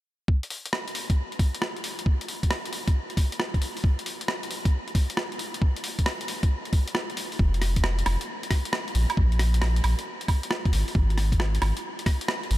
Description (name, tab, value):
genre	UK garage, two-step garage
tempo	135 BPM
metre	4/4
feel	swing 67% on 16ths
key	unclear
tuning	A4 = 439 Hz
part	electronic kick drum	drums	0.3-12.2 s	none	-22 LUFS	equal	none
part	boom bap sampler-style drum kit	drums	0.4-12.6 s	hi-hat, rim click, woodblock	-29 LUFS	equal	none
part	soft dub sub bass	bass	7.4-12.6 s	F1 to Bb1	-23 LUFS	equal	none
room	light reverb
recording	none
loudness	-24 LUFS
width	side -16 dB against mid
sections	0.3-7.4 A section; 7.4-12.6 B section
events	break 7.0-7.4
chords	none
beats	| 0.28 0.73 1.17 1.62 | 2.06 2.51 2.95 3.40 | 3.84 4.29 4.73 5.17 | 5.62 6.06 6.51 6.95 | 7.40 7.84 8.29 8.73 | 9.17 9.62 10.06 10.51 | 10.95 11.40 11.84 12.29